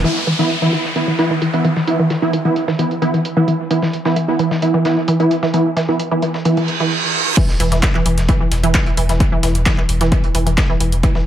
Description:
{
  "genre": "driving peak-time techno",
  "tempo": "131 BPM",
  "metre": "4/4",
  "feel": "straight",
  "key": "unclear",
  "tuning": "A4 = 441 Hz",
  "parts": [
    { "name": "resonant blip pluck", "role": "riff", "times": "0.0-11.2 s", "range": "E3", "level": "-18 LUFS", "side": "equal", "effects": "chorus, overdrive, sidechain pumping, analog delay" },
    { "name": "rave stab", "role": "stabs", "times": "0.0-6.6 s", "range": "E3 to E4", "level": "-18 LUFS", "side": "right 1 dB", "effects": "chorus, built-in reverb, sidechain pumping, dub echo" },
    { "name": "saturated sub bass", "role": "bass", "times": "0.0, 7.6-11.0 s", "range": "E1", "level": "-17 LUFS", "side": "equal", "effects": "tube saturation, sidechain pumping, low-pass filter" },
    { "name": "dusty soul sampler-style drum kit", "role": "drums", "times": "0.0-11.3 s", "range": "hi-hat, snare drum", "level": "-31 LUFS", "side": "right 1 dB", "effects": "overdrive, sidechain pumping on hats, high-pass filter on hats, low-pass filter on hats, high-pass filter on snare, low-pass filter on snare, dub echo" },
    { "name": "downlifter and reverse cymbal", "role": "sound effects", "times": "0.0-7.4 s", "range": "none", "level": "-22 LUFS", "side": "right 3 dB", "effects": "none" },
    { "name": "electronic kick drum", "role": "drums", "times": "7.4-11.1 s", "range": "none", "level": "-16 LUFS", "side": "equal", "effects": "overdrive" },
    { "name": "punchy analog drum machine", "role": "drums", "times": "7.4-11.1 s", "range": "crash cymbal, handclaps, hi-hat", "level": "-25 LUFS", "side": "left 1 dB", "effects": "overdrive, dub echo" }
  ],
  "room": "moderate spring reverb, RT60 2.0 s",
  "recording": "echo-heavy mix",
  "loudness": "-14 LUFS",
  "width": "side -11 dB against mid",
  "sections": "0.0-7.4 A section; 7.4-11.3 B section",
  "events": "filter sweep on synth arpeggio sound 0.0-7.4; reverse cymbal 6.6-7.4; drop 7.4-11.3",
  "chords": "0.0 E5"
}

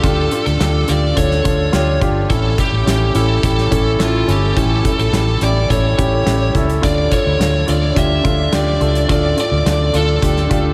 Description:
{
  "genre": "piano-driven pop",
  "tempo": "106 BPM",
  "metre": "4/4",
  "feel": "straight",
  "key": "D harmonic minor",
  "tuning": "A4 = 440 Hz",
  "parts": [
    { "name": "lead guitar through a small cranked amp", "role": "melody", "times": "0.0-10.7 s", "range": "F4 to E5", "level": "-22 LUFS", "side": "equal", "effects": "overdrive" },
    { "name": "warm baby grand piano", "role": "accompaniment", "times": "0.0-10.7 s", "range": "A2 to A4", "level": "-21 LUFS", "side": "equal", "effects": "none" },
    { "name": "vintage muted fingered electric bass", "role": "bass", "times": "0.0-10.7 s", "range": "G1 to D2", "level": "-20 LUFS", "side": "equal", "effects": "none" },
    { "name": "loose indie drum kit", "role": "drums", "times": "0.0-10.6 s", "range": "hi-hat, kick drum, snare drum", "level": "-23 LUFS", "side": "equal", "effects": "none" }
  ],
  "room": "moderate huge ambient reverb, RT60 8.6 s",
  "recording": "dreamy mix soaked in reverb",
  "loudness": "-15 LUFS",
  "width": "mono",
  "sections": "0.0-10.7 A section",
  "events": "none",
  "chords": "0.0 Dm; 2.3 A; 6.8 Dm"
}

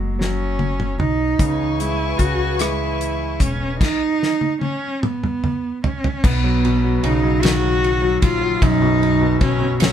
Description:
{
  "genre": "six-eight pop ballad",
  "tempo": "50 BPM (dotted quarters)",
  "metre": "6/8",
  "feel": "straight",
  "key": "unclear",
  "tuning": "A4 = 440 Hz",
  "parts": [
    { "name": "dark cello", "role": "melody", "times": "0.0-9.9 s", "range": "G#3 to F#4", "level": "-21 LUFS", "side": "right 2 dB", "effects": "none" },
    { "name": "clear concert grand piano", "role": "accompaniment", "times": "0.0-9.9 s", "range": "Gb2 to Cb4", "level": "-23 LUFS", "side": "left 2 dB", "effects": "none" },
    { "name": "upright bass", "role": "bass", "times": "0.0-9.9 s", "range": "E1 to C#2", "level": "-22 LUFS", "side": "equal", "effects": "none" },
    { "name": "damped 70s drum kit", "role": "drums", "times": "0.2-9.9 s", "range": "crash cymbal, hi-hat, kick drum, ride cymbal, rim click, snare drum, toms", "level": "-20 LUFS", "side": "left 1 dB", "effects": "none" },
    { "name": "warm studio string section", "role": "sustained chords", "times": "1.4-3.8 s", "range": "E3 to C#6", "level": "-28 LUFS", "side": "left 6 dB", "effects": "none" }
  ],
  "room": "moderate studio reverb, RT60 0.7 s",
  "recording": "band playing live in one room",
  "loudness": "-16 LUFS",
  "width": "side -9 dB against mid",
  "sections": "0.0-6.2 A section; 6.2-9.9 B section",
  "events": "drum fill 0.2-1.4, 3.8-6.2",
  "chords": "0.0 F#5; 1.4 C#m7; 3.8 N.C.; 6.2 Cbadd9"
}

